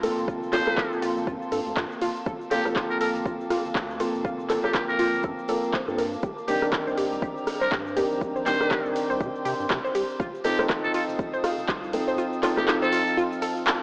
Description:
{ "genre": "deep house", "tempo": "121 BPM", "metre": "4/4", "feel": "swing 58% on 16ths", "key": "G minor", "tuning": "A4 = 440 Hz", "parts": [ { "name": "warbly tape-like pad", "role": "sustained chords", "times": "0.0-13.8 s", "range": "Bb3 to F6", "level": "-36 LUFS", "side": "equal", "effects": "chorus, built-in reverb, sidechain pumping" }, { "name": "analog pluck", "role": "arpeggios", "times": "0.0-13.7 s", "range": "F4 to A5", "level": "-30 LUFS", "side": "equal", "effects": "chorus, sidechain pumping, tape echo" }, { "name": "felt-muted upright piano", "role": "stabs", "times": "0.0-13.8 s", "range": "Eb3 to Bb4", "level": "-27 LUFS", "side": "equal", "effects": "none" }, { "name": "round analog bass", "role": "bass", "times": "0.0-12.2 s", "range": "Eb1 to C3", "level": "-38 LUFS", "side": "equal", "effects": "sidechain pumping" }, { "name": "deep house drum kit", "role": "drums", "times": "0.0-13.8 s", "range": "handclaps, hi-hat, ride cymbal, rim click, shaker", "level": "-30 LUFS", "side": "equal", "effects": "overdrive" }, { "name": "warm soul drum kit", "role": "drums", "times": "0.0-13.8 s", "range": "hi-hat, shaker, snare drum", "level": "-43 LUFS", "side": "equal", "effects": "none" }, { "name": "electronic kick drum", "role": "drums", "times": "0.3-11.8 s", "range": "none", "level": "-31 LUFS", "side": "equal", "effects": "overdrive" }, { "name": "trumpet with metal mute", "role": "melody", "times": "0.5-13.2 s", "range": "G4 to C5", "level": "-28 LUFS", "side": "equal", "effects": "analog delay" } ], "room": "moderate lush hall reverb, RT60 2.0 s", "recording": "AM radio sound", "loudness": "-23 LUFS", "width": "side -37 dB against mid", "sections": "0.0-13.8 A section", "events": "none", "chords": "0.0 Gm11; 6.2 Cm9; 10.2 F7", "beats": "| 0.28 0.78 1.27 1.77 | 2.26 2.76 3.26 3.75 | 4.25 4.74 5.24 5.74 | 6.23 6.73 7.22 7.72 | 8.21 8.71 9.21 9.70 | 10.20 10.69 11.19 11.69 | 12.18 12.68 13.17 13.67" }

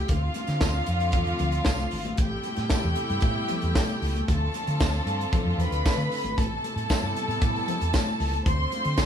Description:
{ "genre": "disco", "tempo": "115 BPM", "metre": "4/4", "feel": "straight", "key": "A minor", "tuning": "A4 = 440 Hz", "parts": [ { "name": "warm studio violin section", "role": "second line", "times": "0.0-9.1 s", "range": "F4 to C6", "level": "-30 LUFS", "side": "left 1 dB", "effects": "none" }, { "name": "warm studio string section", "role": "sustained chords", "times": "0.0-9.1 s", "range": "C3 to F4", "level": "-33 LUFS", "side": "right 1 dB", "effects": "none" }, { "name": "hollow-body short-scale fingered electric bass", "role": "bass", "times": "0.1-9.1 s", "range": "G#1 to D3", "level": "-28 LUFS", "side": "equal", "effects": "none" }, { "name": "tight funk drum kit", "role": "drums", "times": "0.1-9.1 s", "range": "hi-hat, kick drum, snare drum", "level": "-27 LUFS", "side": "equal", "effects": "none" }, { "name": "congas", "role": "percussion", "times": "0.1-9.1 s", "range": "none", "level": "-35 LUFS", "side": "left 4 dB", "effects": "none" }, { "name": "tambourine", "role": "percussion", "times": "0.6-9.1 s", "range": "none", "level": "-42 LUFS", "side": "right 5 dB", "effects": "none" } ], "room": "moderate studio reverb, RT60 0.6 s", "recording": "band playing live in one room", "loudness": "-23 LUFS", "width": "side -8 dB against mid", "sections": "0.0-9.1 A section", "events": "none", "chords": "0.1 Dm7; 2.2 Am9; 4.3 Dm7; 6.4 Am9; 8.5 Dm7", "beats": "| 0.10 0.62 1.14 1.67 | 2.19 2.71 3.24 3.76 | 4.28 4.81 5.33 5.85 | 6.37 6.89 7.42 7.94 | 8.46 8.98" }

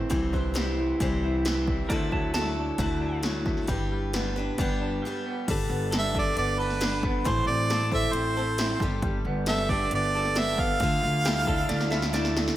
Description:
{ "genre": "folk rock and heartland rock", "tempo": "135 BPM", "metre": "4/4", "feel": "straight", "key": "unclear", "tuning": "A4 = 440 Hz", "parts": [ { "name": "picked steel-string acoustic guitar", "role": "accompaniment", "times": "0.0-12.6 s", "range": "A2 to C5", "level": "-32 LUFS", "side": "left 3 dB", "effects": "none" }, { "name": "electric guitar through a small old amp", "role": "riff", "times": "0.0-12.6 s", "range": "G2 to A4", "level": "-31 LUFS", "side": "right 1 dB", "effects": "none" }, { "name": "upright bass", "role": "bass", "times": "0.1-12.5 s", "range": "G1 to D2", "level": "-31 LUFS", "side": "equal", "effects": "none" }, { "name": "80s electronic pad drums", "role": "drums", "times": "0.1-12.6 s", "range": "crash cymbal, hi-hat, kick drum, snare drum", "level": "-30 LUFS", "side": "equal", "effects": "none" }, { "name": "clean lap steel guitar", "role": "second line", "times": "1.9-3.2, 11.3-12.5 s", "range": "G4 to A5", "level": "-34 LUFS", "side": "right 3 dB", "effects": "none" }, { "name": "warm harmonica", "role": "melody", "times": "6.0-12.1 s", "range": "B4 to F5", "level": "-28 LUFS", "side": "right 2 dB", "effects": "analog delay" } ], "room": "moderate lush hall reverb, RT60 1.9 s, small room ambience", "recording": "big arena sound", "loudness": "-24 LUFS", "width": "side -13 dB against mid", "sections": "0.0-5.5 A section; 5.5-12.6 B section", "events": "break 5.0-5.5; drum fill 11.7-12.6", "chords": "0.1 C; 1.9 Dadd9; 3.7 G; 5.5 Gadd9; 7.3 Am; 8.8 Gadd9; 10.8 Dmadd9", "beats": "| 0.12 0.56 1.01 1.46 | 1.91 2.35 2.80 3.25 | 3.69 4.14 4.59 5.03 | 5.48 5.92 6.37 6.82 | 7.26 7.70 8.15 8.59 | 9.04 9.48 9.92 10.37 | 10.81 11.25 11.70 12.14" }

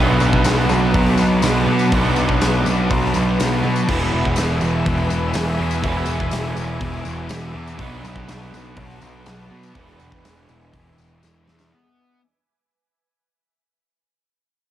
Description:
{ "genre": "rock, shoegaze and dream pop", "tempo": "123 BPM", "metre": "4/4", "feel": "straight", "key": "E mixolydian", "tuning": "A4 = 440 Hz", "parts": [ { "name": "soft additive organ-like pad", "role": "sustained chords", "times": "0.0-11.7 s", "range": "B4 to E6", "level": "-28 LUFS", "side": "left 2 dB", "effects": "ensemble chorus, built-in reverb, cassette tape" }, { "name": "overdriven semi-hollow guitar", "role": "riff", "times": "0.0-11.7 s", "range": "B2 to B4", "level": "-23 LUFS", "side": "right 5 dB", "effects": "reverse reverb, cassette tape" }, { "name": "thick fuzz guitar", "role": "riff", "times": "0.0-12.2 s", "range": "E2 to B3", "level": "-26 LUFS", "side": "left 7 dB", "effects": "distortion, lush chorus, cassette tape" }, { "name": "tight distorted guitar", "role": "riff", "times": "0.0-12.2 s", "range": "E2 to B3", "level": "-26 LUFS", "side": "equal", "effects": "distortion, cassette tape" }, { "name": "fuzz picked electric bass", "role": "bass", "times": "0.0-11.7 s", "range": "E1 to B2", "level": "-22 LUFS", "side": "equal", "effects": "overdrive, transformer saturation" }, { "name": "tambourine", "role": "percussion", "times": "0.2-11.7 s", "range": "none", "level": "-35 LUFS", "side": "left 9 dB", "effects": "none" }, { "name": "huge arena drum kit", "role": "drums", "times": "0.3-11.7 s", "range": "crash cymbal, hi-hat, kick drum, snare drum", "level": "-25 LUFS", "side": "equal", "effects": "cassette tape" } ], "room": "studio reverb", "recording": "home recording on cassette", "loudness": "-16 LUFS", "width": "side -12 dB against mid", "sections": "0.0-11.7 A section", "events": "fade-out 0.0-11.7; drum fill 11.2-11.7", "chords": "0.0 Bm7; 3.9 E; 7.8 Bm7; 9.8 E7", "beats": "0.46 0.94 1.43 | 1.92 2.41 2.90 3.39 | 3.88 4.37 4.86 5.35 | 5.83 6.32 6.81 7.30 | 7.79 8.28 8.77 9.26 | 9.75 10.24 10.73 11.22" }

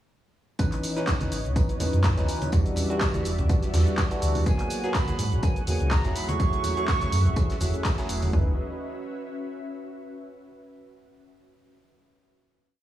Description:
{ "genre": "deep house", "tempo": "124 BPM", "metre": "4/4", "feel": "swing 54% on 16ths", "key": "C# minor", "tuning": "A4 = 439 Hz", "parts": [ { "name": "warm analog pad", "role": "sustained chords", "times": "0.6-8.6 s", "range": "E3 to F#5", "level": "-38 LUFS", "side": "left 1 dB", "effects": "chorus, sidechain pumping" }, { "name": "barky tine electric piano", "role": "stabs", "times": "0.6-8.5 s", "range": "E3 to B4", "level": "-31 LUFS", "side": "equal", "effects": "phaser, sidechain pumping, tape echo" }, { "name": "sub bass with octave", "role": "bass", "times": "0.6-8.6 s", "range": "E1 to G#2", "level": "-24 LUFS", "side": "equal", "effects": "transformer saturation, sidechain pumping" }, { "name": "gated 80s drum kit", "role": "drums", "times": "0.6-8.2 s", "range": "hi-hat, snare drum, tambourine", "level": "-41 LUFS", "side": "left 2 dB", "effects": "sidechain pumping on hats, high-pass filter on hats, high-pass filter on snare, sidechain pumping on perc, high-pass filter on perc, high-pass filter on room" }, { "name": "punchy analog drum machine", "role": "drums", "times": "0.6-8.5 s", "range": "kick drum, toms", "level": "-25 LUFS", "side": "equal", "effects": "none" }, { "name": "punchy analog drum machine", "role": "drums", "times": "0.6-8.3 s", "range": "handclaps, hi-hat, shaker", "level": "-33 LUFS", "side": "equal", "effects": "none" }, { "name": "ethereal airy pad", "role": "texture", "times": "1.4-10.2 s", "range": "C#4 to F#5", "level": "-38 LUFS", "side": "equal", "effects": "ensemble chorus, built-in reverb, sidechain pumping" }, { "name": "congas", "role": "percussion", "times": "1.2-8.3 s", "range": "none", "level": "-30 LUFS", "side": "right 2 dB", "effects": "none" }, { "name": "bright silver concert flute", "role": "melody", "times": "4.5-7.7 s", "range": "G#5 to C#6", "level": "-32 LUFS", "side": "right 4 dB", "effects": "tape echo" } ], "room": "small room ambience", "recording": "none", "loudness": "-23 LUFS", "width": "side -13 dB against mid", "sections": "0.6-8.3 drop; 8.3-10.3 final chord", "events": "drop 0.6-8.3", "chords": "0.6 C#m9; 2.5 Em9; 4.5 G#m9; 6.2 F#m9; 8.3 C#m9", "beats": "| 0.59 1.08 1.56 2.04 | 2.53 3.01 3.50 3.98 | 4.46 4.95 5.43 5.92 | 6.40 6.88 7.37 7.85 | 8.33 8.82 9.30 9.79" }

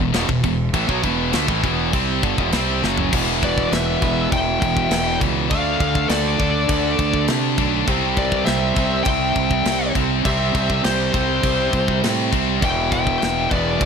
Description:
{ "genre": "heavy metal", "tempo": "101 BPM", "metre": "4/4", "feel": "straight", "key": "E minor", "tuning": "A4 = 439 Hz", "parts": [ { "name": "distorted electric guitar", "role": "riff", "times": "0.0-13.9 s", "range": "E2 to D4", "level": "-23 LUFS", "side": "right 13 dB", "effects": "overdrive" }, { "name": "heavy high-gain guitar", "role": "riff", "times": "0.0-13.9 s", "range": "E2 to D4", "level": "-23 LUFS", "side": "left 14 dB", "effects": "distortion" }, { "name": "fuzz fingered electric bass", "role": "bass", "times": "0.0-13.9 s", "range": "E1 to C3", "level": "-24 LUFS", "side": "equal", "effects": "overdrive" }, { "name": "tight metal drum kit", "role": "drums", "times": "0.1-13.9 s", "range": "crash cymbal, kick drum, snare drum, toms", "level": "-24 LUFS", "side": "equal", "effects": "none" }, { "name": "high-gain lead guitar", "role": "melody", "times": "3.4-13.9 s", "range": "C5 to G5", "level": "-24 LUFS", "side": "left 4 dB", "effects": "distortion" }, { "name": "high-gain lead guitar", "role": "second line", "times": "3.4-13.9 s", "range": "G4 to E5", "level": "-32 LUFS", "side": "right 1 dB", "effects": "distortion" } ], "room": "studio ambience", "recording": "none", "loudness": "-17 LUFS", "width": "side -6 dB against mid", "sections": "0.0-3.1 A section; 3.1-13.9 B section", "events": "drum fill 2.8", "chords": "0.0 Em; 5.5 Dm; 7.9 C; 12.6 Em", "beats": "0.14 | 0.74 1.34 1.94 2.53 | 3.13 3.72 4.32 4.91 | 5.51 6.10 6.70 7.29 | 7.88 8.48 9.07 9.66 | 10.26 10.85 11.44 12.03 | 12.62 13.22 13.81" }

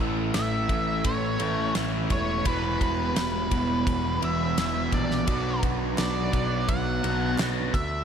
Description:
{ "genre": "classic rock", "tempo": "85 BPM", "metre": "4/4", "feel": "straight", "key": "unclear", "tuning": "A4 = 440 Hz", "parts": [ { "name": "crunchy overdriven guitar", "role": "riff", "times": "0.0-7.7 s", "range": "E2 to F#4", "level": "-30 LUFS", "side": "left 8 dB", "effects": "phaser" }, { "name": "overdriven electric guitar", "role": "riff", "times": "0.0-7.7 s", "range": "E2 to B3", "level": "-30 LUFS", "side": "right 12 dB", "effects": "none" }, { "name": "growling picked electric bass", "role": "bass", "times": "0.0-8.0 s", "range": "E1 to D2", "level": "-31 LUFS", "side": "equal", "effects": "overdrive" }, { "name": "octave-fuzz lead guitar", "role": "melody", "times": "0.3-8.0 s", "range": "B4 to F#5", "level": "-30 LUFS", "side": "equal", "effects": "wah, distortion, slapback echo" }, { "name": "damped 70s drum kit", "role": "drums", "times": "0.3-7.9 s", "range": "kick drum, ride cymbal, snare drum", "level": "-30 LUFS", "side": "equal", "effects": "none" }, { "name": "group handclap", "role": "percussion", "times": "6.0-7.5 s", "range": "none", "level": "barely audible", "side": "none", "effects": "none" } ], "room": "moderate scoring stage reverb, RT60 1.9 s, small room ambience", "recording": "big arena sound", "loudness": "-23 LUFS", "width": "side -8 dB against mid", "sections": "0.0-8.0 A section", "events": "none", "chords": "0.0 A; 2.5 Em; 5.3 Bm", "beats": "0.34 1.05 1.75 | 2.46 3.16 3.87 4.57 | 5.28 5.98 6.68 7.38" }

